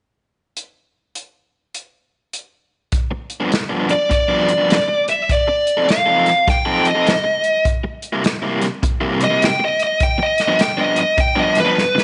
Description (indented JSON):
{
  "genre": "electric blues shuffle",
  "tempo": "102 BPM",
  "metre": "4/4",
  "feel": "swing 63% on 8ths",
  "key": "unclear",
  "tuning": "A4 = 440 Hz",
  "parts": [
    { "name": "natural country drum kit", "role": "drums", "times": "0.6-12.0 s", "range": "hi-hat, kick drum, snare drum", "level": "-23 LUFS", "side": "equal", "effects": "none" },
    { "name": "overdriven semi-hollow guitar", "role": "riff", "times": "3.1-12.0 s", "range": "G2 to A4", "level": "-23 LUFS", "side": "equal", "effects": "tremolo" },
    { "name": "smooth overdriven lead guitar", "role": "melody", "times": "3.9-12.0 s", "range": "B4 to G5", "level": "-18 LUFS", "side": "equal", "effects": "none" }
  ],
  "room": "moderate echo chamber reverb, RT60 1.8 s, small room ambience",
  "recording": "nothing above 10.5 kHz",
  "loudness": "-17 LUFS",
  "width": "mono",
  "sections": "0.6-2.9 A section; 2.9-12.0 B section",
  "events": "drum fill 11.8",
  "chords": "0.6 N.C.; 2.9 G7; 5.3 F7; 7.6 C7; 10.0 G7"
}